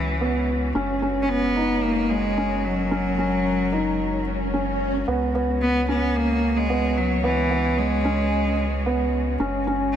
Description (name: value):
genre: electronica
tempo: 111 BPM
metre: 4/4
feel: straight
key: unclear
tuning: A4 = 439 Hz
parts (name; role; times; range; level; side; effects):
- clear cello; melody; 0.0-9.1 s; E3 to C#4; -24 LUFS; equal; digital delay
- dark string quartet; sustained chords; 0.0-10.0 s; G#3 to C#5; -32 LUFS; left 4 dB; none
- round analog bass; bass; 0.0-10.0 s; F#1 to C#2; -28 LUFS; equal; none
- felt-muted upright piano; riff; 0.2-10.0 s; B3 to D#4; -25 LUFS; right 1 dB; digital delay
- swell; sound effects; 4.2-5.1 s; none; -32 LUFS; right 2 dB; none
room: moderate huge ambient reverb, RT60 6.2 s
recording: none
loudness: -20 LUFS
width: side -9 dB against mid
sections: 0.0-10.0 A section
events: swell 4.2-5.1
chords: 0.0 C#m7; 0.8 F#; 5.1 C#7(no3); 9.4 F#5